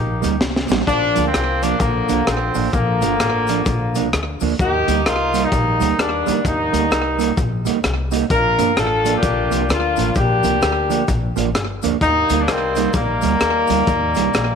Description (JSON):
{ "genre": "ska", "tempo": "129 BPM", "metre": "4/4", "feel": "swing 62% on 8ths", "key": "Bb major", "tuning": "A4 = 440 Hz", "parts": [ { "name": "warm horn section", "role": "melody", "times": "0.0-14.6 s", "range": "D3 to Bb4", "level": "-18 LUFS", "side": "left 2 dB", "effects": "none" }, { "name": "upright bass", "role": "bass", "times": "0.0-14.6 s", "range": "G1 to Eb2", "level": "-23 LUFS", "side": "left 1 dB", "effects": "none" }, { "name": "mellow electric guitar", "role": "accompaniment", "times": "0.2-14.3 s", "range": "F3 to Eb4", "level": "-23 LUFS", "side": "right 12 dB", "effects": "lush chorus" }, { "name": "crunchy breakbeat drum kit", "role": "drums", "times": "0.2-14.5 s", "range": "hi-hat, kick drum, rim click, snare drum", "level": "-23 LUFS", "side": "left 1 dB", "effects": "slapback echo" }, { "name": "cabasa", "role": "percussion", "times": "0.2-14.5 s", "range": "none", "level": "-38 LUFS", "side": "left 18 dB", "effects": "none" } ], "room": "light reverb, small room ambience", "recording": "1960s-style stereo with parts hard left and right", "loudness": "-16 LUFS", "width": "side -6 dB against mid", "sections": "0.9-14.6 A section", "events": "drum fill 0.4-0.9", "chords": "0.0 Eb; 0.9 Bb; 4.6 Eb; 8.3 Bb; 12.0 Eb", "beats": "0.41 | 0.87 1.34 1.80 2.27 | 2.73 3.19 3.66 4.12 | 4.59 5.05 5.51 5.98 | 6.44 6.91 7.37 7.83 | 8.30 8.76 9.23 9.69 | 10.16 10.62 11.09 11.55 | 12.01 12.48 12.94 13.41 | 13.87 14.34" }